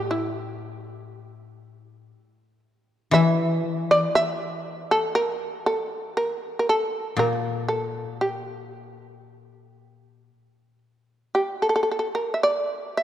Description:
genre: japanese traditional.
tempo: 59 BPM.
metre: 4/4.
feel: rubato.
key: A in sen.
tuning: A4 = 441 Hz.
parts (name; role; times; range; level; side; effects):
koto; accompaniment; 0.0-10.3 s; A2 to E3; -26 LUFS; left 3 dB; none.
shamisen; melody; 0.1-13.0 s; E4 to E5; -23 LUFS; right 1 dB; none.
room: wet church reverb, RT60 3.1 s.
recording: dark, warm production.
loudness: -22 LUFS.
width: side -11 dB against mid.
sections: 0.0-13.0 A section.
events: none.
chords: none.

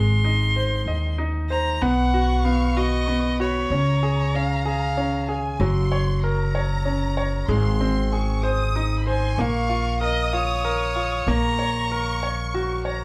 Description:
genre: six-eight pop ballad.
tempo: 63 BPM (dotted quarters).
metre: 6/8.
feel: straight.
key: unclear.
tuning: A4 = 442 Hz.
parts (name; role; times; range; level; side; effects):
rich violin; melody; 0.0-5.3, 9.1-12.2 s; Db5 to C6; -29 LUFS; equal; none.
bright grand piano; accompaniment; 0.0-13.0 s; Gb3 to Eb5; -28 LUFS; equal; none.
upright bass; bass; 0.0-13.0 s; Gb1 to Eb2; -26 LUFS; equal; none.
warm studio violin section; second line; 1.8-13.0 s; Ab5 to Eb6; -34 LUFS; equal; none.
room: moderate large studio reverb, RT60 0.8 s.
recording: band playing live in one room.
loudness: -23 LUFS.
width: mono.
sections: 0.0-1.8 A section; 1.8-13.0 B section.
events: none.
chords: 0.0 Ab; 1.8 Cb; 3.7 Db; 5.6 Gb; 7.5 Ab; 9.4 Bbm; 11.3 Gb/Bb.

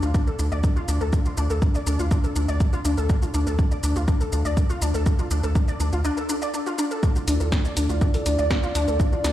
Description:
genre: melodic techno.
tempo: 122 BPM.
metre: 4/4.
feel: straight.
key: D minor.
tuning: A4 = 440 Hz.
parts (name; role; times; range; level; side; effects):
warbly dusty pluck; arpeggios; 0.0-9.3 s; D4 to D5; -27 LUFS; left 1 dB; ensemble chorus, sidechain pumping, dub echo.
round analog bass; bass; 0.0-9.3 s; D2; -23 LUFS; equal; sidechain pumping.
punchy analog drum machine; drums; 0.0-9.3 s; hi-hat, shaker, snare drum; -33 LUFS; equal; sidechain pumping on perc, sidechain pumping on hats.
electronic kick drum; drums; 0.1-9.1 s; none; -20 LUFS; equal; none.
dark analog pad; sustained chords; 7.0-9.3 s; A3 to D5; -28 LUFS; right 1 dB; chorus, sidechain pumping.
room: light reverb.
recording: played on a big sound system in a bare room, large studio reverb.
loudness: -20 LUFS.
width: side -13 dB against mid.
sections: 0.0-9.3 A section.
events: break 6.0-7.0.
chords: 0.0 Dmadd9.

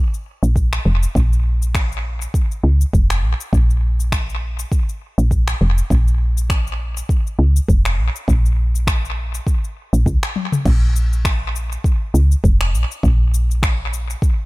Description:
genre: organic downtempo.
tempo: 101 BPM.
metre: 4/4.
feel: swing 56% on 16ths.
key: Bb minor.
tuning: A4 = 440 Hz.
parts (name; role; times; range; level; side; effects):
afro-pop drum kit; drums; 0.1-14.4 s; crash cymbal, finger snaps, shaker, toms; -26 LUFS; left 2 dB; analog delay.
woody FM bass; bass; 0.4-14.2 s; F1 to Db2; -16 LUFS; equal; sidechain pumping.
electronic kick drum; drums; 0.6-14.4 s; none; -18 LUFS; equal; none.
room: little or no reverb.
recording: echo-heavy mix.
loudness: -15 LUFS.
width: side -22 dB against mid.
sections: 0.0-10.7 A section; 10.7-14.5 B section.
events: drum fill 10.4.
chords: none.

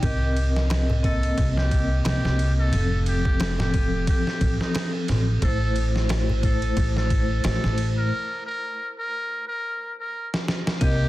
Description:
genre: trip hop.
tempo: 89 BPM.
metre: 4/4.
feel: swing 56% on 16ths.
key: unclear.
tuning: A4 = 440 Hz.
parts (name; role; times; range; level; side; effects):
trumpet with metal mute; melody; 0.0-11.1 s; Eb4 to Bb4; -31 LUFS; equal; tape echo.
vibraphone with hard mallets; accompaniment; 0.0-11.1 s; F3 to Eb5; -28 LUFS; left 1 dB; harmonic tremolo, tape echo.
upright bass; bass; 0.0-11.1 s; F1 to C2; -23 LUFS; equal; none.
trip hop sampler-style drum kit; drums; 0.0-11.0 s; kick drum, ride cymbal, snare drum; -26 LUFS; equal; none.
darbuka; percussion; 0.0-7.6 s; none; -31 LUFS; equal; none.
dark studio string section; sustained chords; 10.8-11.1 s; C3 to Eb4; -27 LUFS; left 1 dB; none.
concert harp; arpeggios; 10.8-11.1 s; Bb3; -32 LUFS; left 1 dB; none.
room: studio reverb.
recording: dense, heavily limited modern master.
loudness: -21 LUFS.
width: side -16 dB against mid.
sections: 0.0-10.8 A section.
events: filter sweep on vibraphone 0.0-10.8; break 8.1-10.8; drum fill 10.3-10.8.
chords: 0.0 Cm7; 2.7 F; 5.4 Am; 8.1 N.C..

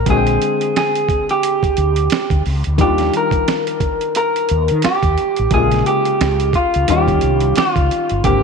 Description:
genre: R&B, neo-soul.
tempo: 88 BPM.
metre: 4/4.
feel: swing 60% on 16ths.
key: Eb major.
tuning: A4 = 441 Hz.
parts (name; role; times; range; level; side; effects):
electric guitar through a small old amp; melody; 0.0-8.4 s; F4 to Bb4; -17 LUFS; right 2 dB; none.
warm concert grand piano; accompaniment; 0.0-8.4 s; C3 to G5; -22 LUFS; left 12 dB; none.
mellow fretless electric bass; bass; 0.0-8.4 s; G1 to Eb3; -18 LUFS; equal; ensemble chorus.
dusty soul sampler-style drum kit; drums; 0.1-8.4 s; hi-hat, kick drum, snare drum; -20 LUFS; right 3 dB; none.
room: light reverb.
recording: 1960s-style stereo.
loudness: -14 LUFS.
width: side -5 dB against mid.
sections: 0.0-8.4 A section.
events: none.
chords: 0.1 Bb13 (rootless); 2.8 Ebmaj9; 5.5 Bbm7; 6.9 Eb9.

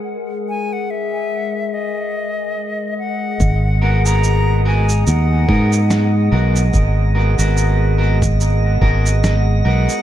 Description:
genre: ambient dub.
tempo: 72 BPM.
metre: 4/4.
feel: swing 57% on 16ths.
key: G# minor.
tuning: A4 = 440 Hz.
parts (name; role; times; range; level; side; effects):
warbly tape-like pad; sustained chords; 0.0-10.0 s; G#3 to F#5; -24 LUFS; left 3 dB; chorus, built-in reverb.
silver concert flute; melody; 0.5-10.0 s; D#5 to A#5; -25 LUFS; left 2 dB; dub echo.
fingered electric bass; bass; 3.4-9.9 s; G#1 to G#2; -14 LUFS; equal; none.
electronic kick drum; drums; 3.4-9.0 s; none; -18 LUFS; equal; overdrive.
electronic shaker and snare drum; drums; 3.4-10.0 s; none; -25 LUFS; right 2 dB; overdrive, low-pass filter on perc, low-pass filter on snare, dub echo.
drifting glass-harmonics texture; texture; 4.3-10.0 s; D#5; -28 LUFS; right 6 dB; chorus, built-in reverb.
electric guitar at the edge of break-up; stabs; 3.8-9.9 s; B3 to A#4; -24 LUFS; equal; spring reverb, dub echo.
room: little or no reverb.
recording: echo-heavy mix.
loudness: -14 LUFS.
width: side -12 dB against mid.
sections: 0.0-3.4 A section; 3.4-10.0 B section.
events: none.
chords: 0.0 N.C.; 3.4 G#m7.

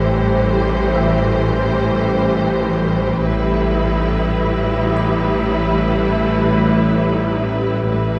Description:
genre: cinematic, suspense film score.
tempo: 52 BPM.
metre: 4/4.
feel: straight.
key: A minor.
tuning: A4 = 441 Hz.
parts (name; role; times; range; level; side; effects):
warm symphonic violin section; melody; 0.0-8.2 s; B4 to C5; -27 LUFS; equal; none.
warm symphonic viola section; accompaniment; 0.0-8.2 s; E3 to E4; -23 LUFS; equal; none.
ethereal airy pad; sustained chords; 0.0-8.2 s; G4 to G5; -27 LUFS; equal; ensemble chorus, built-in reverb, phaser.
rich studio cello section; bass; 0.0-8.2 s; A2; -26 LUFS; equal; none.
rich symphonic double bass section; bass; 0.0-8.2 s; A1; -24 LUFS; equal; none.
bowed-like drone; drone; 0.0-8.2 s; A1; -25 LUFS; equal; built-in reverb, phaser.
music box; texture; 0.0-8.2 s; E5 to E6; -33 LUFS; equal; none.
room: wet scoring stage reverb, RT60 1.6 s.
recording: heard from further back in the room, nothing above 10.7 kHz.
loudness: -17 LUFS.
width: mono.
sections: 0.0-8.2 A section.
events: none.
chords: 0.0 Am7; 3.3 Em/A.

